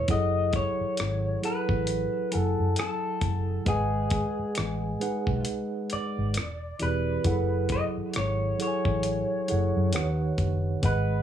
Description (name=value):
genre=R&B, neo-soul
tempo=67 BPM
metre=4/4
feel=swing 56% on 16ths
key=F# dorian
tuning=A4 = 439 Hz
part: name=electric guitar through a small old amp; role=melody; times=0.0-11.2 s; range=G#4 to D#5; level=-30 LUFS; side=left 2 dB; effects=none
part: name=mellow tine electric piano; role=accompaniment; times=0.0-11.2 s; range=D#3 to G#5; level=-30 LUFS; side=right 3 dB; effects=medium stereo tremolo
part: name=vintage muted fingered electric bass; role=bass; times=0.0-11.2 s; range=E1 to F#2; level=-28 LUFS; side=equal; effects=none
part: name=dusty soul sampler-style drum kit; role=drums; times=0.1-11.1 s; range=hi-hat, kick drum, rim click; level=-30 LUFS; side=left 1 dB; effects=none
room=light reverb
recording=studio reverb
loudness=-25 LUFS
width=side -10 dB against mid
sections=0.1-11.2 A section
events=none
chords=0.1 F#m9; 3.7 G#m7; 6.4 E7alt; 7.2 F#m7; 9.9 D#7alt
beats=| 0.09 0.98 1.88 2.77 | 3.67 4.56 5.46 6.35 | 7.25 8.14 9.04 9.94 | 10.83